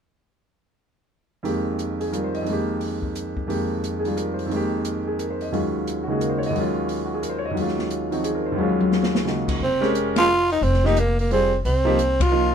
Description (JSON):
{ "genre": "modal jazz", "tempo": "177 BPM", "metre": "3/4", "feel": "swing 63% on 8ths", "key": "unclear", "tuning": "A4 = 444 Hz", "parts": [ { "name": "clear concert grand piano", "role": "accompaniment", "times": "1.4-12.5 s", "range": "Eb2 to Eb5", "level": "-23 LUFS", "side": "equal", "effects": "none" }, { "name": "open jazz drum kit", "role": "drums", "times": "1.4-12.3 s", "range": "crash cymbal, hi-hat, kick drum, ride cymbal, snare drum, toms", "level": "-28 LUFS", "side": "left 2 dB", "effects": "none" }, { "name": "growling tenor saxophone", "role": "melody", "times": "9.6-12.5 s", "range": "Bb3 to F4", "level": "-20 LUFS", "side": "right 1 dB", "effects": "none" }, { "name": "upright bass", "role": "bass", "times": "9.6-12.5 s", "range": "F1 to C2", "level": "-23 LUFS", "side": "equal", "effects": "none" } ], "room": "light reverb", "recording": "minimal, uncompressed stereo recording", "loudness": "-20 LUFS", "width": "side -7 dB against mid", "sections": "1.4-9.6 A section; 9.6-12.5 B section", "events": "drum fill 8.6-9.3; band accent 10.1, 12.1", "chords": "1.4 Fm11; 5.5 Ebm11; 9.6 Fm11", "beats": "| 1.44 1.78 2.12 | 2.46 2.80 3.14 | 3.48 3.82 4.16 | 4.50 4.84 5.18 | 5.52 5.86 6.20 | 6.54 6.88 7.22 | 7.56 7.90 8.24 | 8.58 8.92 9.26 | 9.60 9.94 10.28 | 10.62 10.96 11.30 | 11.64 11.98 12.32" }